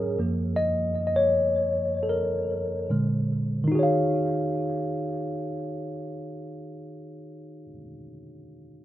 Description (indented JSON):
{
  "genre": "R&B",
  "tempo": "71-81 BPM",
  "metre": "4/4",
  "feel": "swing 58% on 16ths",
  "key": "Eb minor",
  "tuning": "A4 = 438 Hz",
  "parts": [
    { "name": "tine electric piano", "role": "solo", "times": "0.0-8.8 s", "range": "Gb2 to F5", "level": "-25 LUFS", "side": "equal", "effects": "overdrive, tape echo" }
  ],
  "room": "moderate small room reverb, RT60 0.5 s",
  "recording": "rough home demo mix",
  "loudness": "-23 LUFS",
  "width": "side -13 dB against mid",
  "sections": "0.0-3.7 A section; 3.7-7.1 B section",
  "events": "slowing down 0.0-3.7; tine electric piano solo 0.0-3.7",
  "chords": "0.2 Gbmaj7; 2.9 Bb7; 3.7 Ebm11"
}